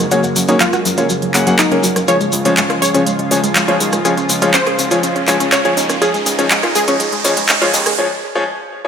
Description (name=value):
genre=progressive house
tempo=122 BPM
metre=4/4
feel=straight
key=Db major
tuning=A4 = 441 Hz
part: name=lush unison pad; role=sustained chords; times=0.0-8.0 s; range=Db3 to F4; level=-21 LUFS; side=equal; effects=chorus
part: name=analog pluck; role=arpeggios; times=0.0-7.9 s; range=Gb3 to Ab4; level=-20 LUFS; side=equal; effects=chorus, tape echo
part: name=fat analog bass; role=bass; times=0.0-7.9 s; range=Gb1 to Gb2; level=-25 LUFS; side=equal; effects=none
part: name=clear concert grand piano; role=stabs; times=0.1-8.9 s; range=F3 to Gb5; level=-18 LUFS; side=left 2 dB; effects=low-pass filter, tape echo
part: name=pop drum kit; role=drums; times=0.1-8.0 s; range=handclaps, hi-hat, rim click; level=-18 LUFS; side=right 1 dB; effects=studio reverb
part: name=shekere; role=percussion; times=0.1-8.0 s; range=none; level=-23 LUFS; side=left 3 dB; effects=none
part: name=wide unison pluck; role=melody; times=0.6-7.4 s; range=Eb4 to Db5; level=-20 LUFS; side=equal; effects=digital delay
part: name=riser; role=sound effects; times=4.4-8.0 s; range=none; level=-24 LUFS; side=right 3 dB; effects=none
room=moderate lush hall reverb, RT60 2.1 s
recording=high-pass filter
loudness=-12 LUFS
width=side -7 dB against mid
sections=0.0-8.9 A section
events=build-up 0.0-8.9; filter sweep on synth arpeggio sound 0.0-8.9; riser 4.4-8.0; break 8.0-8.9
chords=0.0 Gbadd9; 2.1 Db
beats=| 0.12 0.61 1.10 1.59 | 2.08 2.57 3.06 3.56 | 4.05 4.54 5.03 5.52 | 6.02 6.51 7.00 7.49 | 7.98 8.47